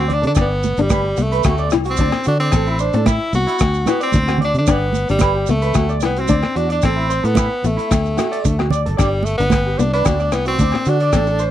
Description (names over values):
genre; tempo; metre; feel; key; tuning
highlife guitar band; 111 BPM; 4/4; straight; unclear; A4 = 440 Hz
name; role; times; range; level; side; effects
edgy tenor saxophone; melody; 0.0-11.5 s; G3 to F#4; -20 LUFS; equal; none
flamenco guitar; accompaniment; 0.0-11.3 s; A3 to E4; -23 LUFS; left 6 dB; none
electric guitar through a small old amp; arpeggios; 0.0-11.5 s; E4 to D5; -24 LUFS; right 4 dB; lush chorus
fingered electric bass; bass; 0.0-11.5 s; G1 to D3; -19 LUFS; equal; none
cloth-damped thuddy drum kit; drums; 0.1-11.5 s; hi-hat, kick drum, rim click; -20 LUFS; equal; none
congas; percussion; 0.1-11.2 s; none; -22 LUFS; right 6 dB; none
agogo bells; percussion; 0.4-11.3 s; none; -31 LUFS; left 15 dB; none
maracas; percussion; 0.4-11.5 s; none; -33 LUFS; right 17 dB; none
room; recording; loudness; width
small room ambience; dry, close 1970s-style studio recording; -15 LUFS; side -12 dB against mid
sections
0.0-11.5 A section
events
none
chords
0.4 G; 1.4 D; 2.5 Am; 3.6 D; 4.7 G; 5.8 D; 6.8 Am; 7.9 D; 9.0 G; 10.1 D